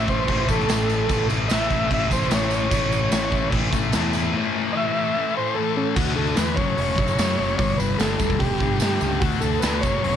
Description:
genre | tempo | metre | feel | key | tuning
garage rock duo or trio | 148 BPM | 4/4 | straight | A mixolydian | A4 = 440 Hz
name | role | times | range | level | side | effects
overdriven combo organ | melody | 0.0-10.2 s | C#4 to E5 | -25 LUFS | right 2 dB | none
thick fuzz guitar | riff | 0.0-10.2 s | F#2 to D4 | -25 LUFS | left 10 dB | distortion
fuzz fingered electric bass | bass | 0.0-10.2 s | E1 to G2 | -26 LUFS | right 2 dB | overdrive
raw garage drum kit | drums | 0.1-10.1 s | crash cymbal, hi-hat, kick drum, snare drum | -24 LUFS | right 1 dB | none
tambourine | percussion | 0.1-9.9 s | none | -37 LUFS | right 14 dB | none
room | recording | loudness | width
light reverb, small room ambience | 1960s-style stereo with parts hard left and right | -19 LUFS | side -9 dB against mid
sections
0.0-6.0 A section; 6.0-10.2 B section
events
transistor combo organ solo 0.0-6.0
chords
0.0 A; 6.0 D5; 6.6 F#5; 7.6 G5; 9.2 D5

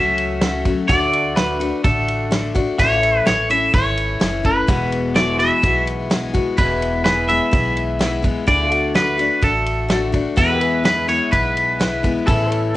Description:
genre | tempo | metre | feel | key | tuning
honky-tonk and classic country | 126 BPM | 4/4 | straight | unclear | A4 = 440 Hz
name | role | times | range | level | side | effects
twangy electric guitar | melody | 0.0-12.8 s | A4 to E5 | -19 LUFS | right 1 dB | cassette tape
picked steel-string acoustic guitar | accompaniment | 0.0-12.8 s | E2 to F#4 | -22 LUFS | left 4 dB | none
pedal steel guitar | sustained chords | 0.0-12.8 s | E4 to E5 | -29 LUFS | right 1 dB | none
upright bass | bass | 0.0-12.8 s | E1 to E2 | -25 LUFS | right 1 dB | none
natural country drum kit | drums | 0.2-12.6 s | kick drum, ride cymbal, snare drum | -21 LUFS | right 1 dB | none
room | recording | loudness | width
light reverb | home recording on cassette, nothing above 10.4 kHz | -15 LUFS | side -16 dB against mid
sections
0.0-12.8 A section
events
none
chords
0.0 F#m; 0.9 D; 2.8 A; 4.7 Eadd9; 6.6 E; 8.5 D; 10.4 E

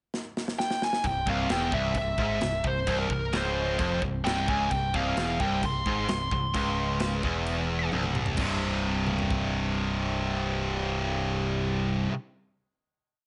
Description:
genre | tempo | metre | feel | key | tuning
heavy metal | 131 BPM | 4/4 | straight | unclear | A4 = 440 Hz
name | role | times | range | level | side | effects
modern studio drum kit | drums | 0.1-9.4 s | china cymbal, crash cymbal, kick drum, snare drum, toms | -36 LUFS | equal | none
bluesy overdriven lead guitar | melody | 0.6-7.9 s | Bb4 to C6 | -32 LUFS | equal | distortion
distorted electric guitar | riff | 1.0-12.1 s | C2 to C3 | -38 LUFS | equal | distortion
high-gain distorted guitar | riff | 1.0-12.1 s | C2 to C3 | -36 LUFS | equal | distortion
high-gain distorted guitar | riff | 1.0-12.1 s | C2 to C3 | -34 LUFS | equal | distortion
modern bright picked electric bass | bass | 1.0-12.1 s | C1 to Ab1 | -36 LUFS | equal | none
room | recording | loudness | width
light reverb | nothing above 10.9 kHz | -28 LUFS | mono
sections
0.0-1.0 pickup bar; 1.0-8.4 riff; 8.4-12.1 final chord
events
drum fill 0.1-1.0, 7.9-8.4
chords
0.0 N.C.; 1.0 C; 8.4 C5

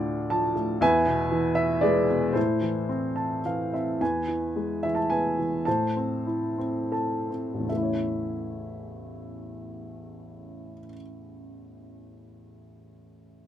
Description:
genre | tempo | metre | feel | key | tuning
classical, lyrical solo piano | 71-122 BPM | 3/4 | rubato | unclear | A4 = 440 Hz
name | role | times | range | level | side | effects
warm upright piano | solo | 0.0-13.5 s | A1 to A5 | -25 LUFS | equal | none
room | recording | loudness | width
little or no reverb | close, detailed microphones | -24 LUFS | side -10 dB against mid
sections
0.0-4.0 A section; 4.0-7.7 B section; 7.7-12.4 C section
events
upright piano fill 0.0-0.8, 2.9-4.0, 6.6-7.7; slowing down 4.0-7.7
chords
0.0 Dm; 0.8 E; 2.4 Am; 4.0 E; 5.7 Am; 7.7 A

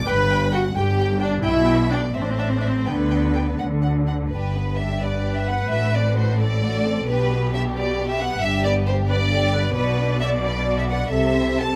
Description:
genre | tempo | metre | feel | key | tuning
quick classical-period movement for string orchestra | 81-91 BPM (dotted quarters) | 6/8 | rubato | G major | A4 = 440 Hz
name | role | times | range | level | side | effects
clear chamber violin section | second line | 0.0-11.8 s | B3 to B5 | -34 LUFS | equal | none
rich studio violin section | melody | 0.1-11.8 s | B4 to A5 | -29 LUFS | equal | none
rich chamber viola section | accompaniment | 0.1-11.8 s | B3 to D5 | -28 LUFS | equal | none
clear symphonic double bass section | bass | 0.1-11.8 s | G1 to D2 | -27 LUFS | equal | none
warm chamber cello section | bass | 0.1-11.8 s | G2 to D3 | -26 LUFS | equal | none
room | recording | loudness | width
light reverb | none | -21 LUFS | mono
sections
0.0-4.3 A section; 4.3-11.8 B section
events
none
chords
0.1 G; 1.4 G/B; 2.1 Am; 2.9 G/D; 3.6 D; 4.3 G; 5.7 D7/A; 7.1 G/B; 8.4 G; 9.8 Bm; 11.1 Am/C

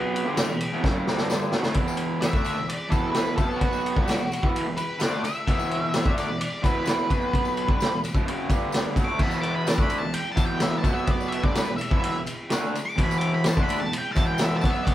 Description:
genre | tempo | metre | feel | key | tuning
garage rock duo or trio | 129 BPM | 4/4 | straight | E minor | A4 = 440 Hz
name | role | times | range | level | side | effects
raw garage guitar | riff | 0.0-14.9 s | E2 to D4 | -26 LUFS | right 1 dB | overdrive
vintage drum kit | drums | 0.2-14.9 s | crash cymbal, kick drum, ride cymbal, snare drum | -25 LUFS | equal | none
tambourine | percussion | 0.4-14.9 s | none | -43 LUFS | left 4 dB | none
octave-fuzz lead guitar | melody | 2.2-14.9 s | F#4 to D6 | -30 LUFS | left 1 dB | distortion
room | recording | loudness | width
moderate stone room reverb, RT60 1.1 s | band playing live in one room | -22 LUFS | side -13 dB against mid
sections
0.0-1.8 A section; 1.8-14.9 B section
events
drum fill 0.8-1.8; lead electric guitar solo 1.8-14.9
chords
0.2 Em; 1.1 G5; 1.5 Bm7; 1.8 E5; 3.4 B5; 4.0 Em; 7.1 B5; 7.7 Em; 8.5 G5; 9.0 E5; 10.8 B5; 11.4 Em

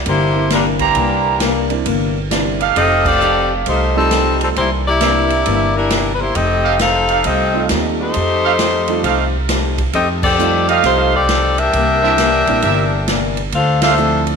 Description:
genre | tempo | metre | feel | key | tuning
jazz, big band swing | 134 BPM | 4/4 | swing 66% on 8ths | unclear | A4 = 440 Hz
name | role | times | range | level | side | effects
bright saxophone section | melody | 0.1-14.2 s | E3 to F5 | -16 LUFS | left 3 dB | slapback echo
picked acoustic archtop guitar | accompaniment | 0.1-14.3 s | C3 to G4 | -24 LUFS | left 11 dB | none
upright bass | bass | 0.1-14.4 s | F1 to F2 | -20 LUFS | right 1 dB | none
swinging big-band drum kit | drums | 0.1-14.3 s | crash cymbal, hi-hat, kick drum, ride cymbal, snare drum | -22 LUFS | right 1 dB | none
clear baby grand piano | accompaniment | 0.4-14.4 s | F3 to F4 | -24 LUFS | right 12 dB | none
clear trumpet section | stabs | 0.8-13.9 s | D4 to Bb5 | -20 LUFS | right 11 dB | none
room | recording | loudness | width
moderate echo chamber reverb, RT60 2.2 s | 1960s-style stereo with parts hard left and right | -13 LUFS | side -5 dB against mid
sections
0.0-14.4 A section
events
band accent 3.0, 10.2, 13.8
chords
0.0 C9; 2.8 F9; 4.6 C9; 6.3 F9; 11.7 C9; 13.5 Dm7

